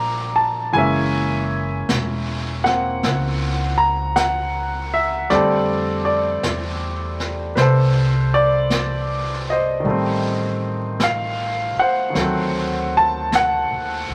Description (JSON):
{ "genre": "jazz ballad", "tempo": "52 BPM", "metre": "4/4", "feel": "swing 67% on 8ths", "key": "unclear", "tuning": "A4 = 440 Hz", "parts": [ { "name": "clear baby grand piano", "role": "accompaniment", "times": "0.0-14.1 s", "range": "D3 to D6", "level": "-22 LUFS", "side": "equal", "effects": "none" }, { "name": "upright bass", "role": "bass", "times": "0.0-14.1 s", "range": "Fb1 to F2", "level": "-26 LUFS", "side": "equal", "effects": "none" }, { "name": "jazz brush drum kit", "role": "drums", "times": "0.7-14.1 s", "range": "brushed snare drum, hi-hat, snare drum", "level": "-30 LUFS", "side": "equal", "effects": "none" } ], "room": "moderate studio reverb, RT60 0.5 s", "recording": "vinyl crackle", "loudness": "-20 LUFS", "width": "mono", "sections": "0.0-14.1 A section", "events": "none", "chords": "0.0 Gm7; 0.7 Gb9; 5.3 F6; 9.9 Am7b5; 12.1 D7b9", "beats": "| 0.73 1.88 3.03 4.16 | 5.30 6.43 7.57 8.71 | 9.85 10.99 12.14 13.31" }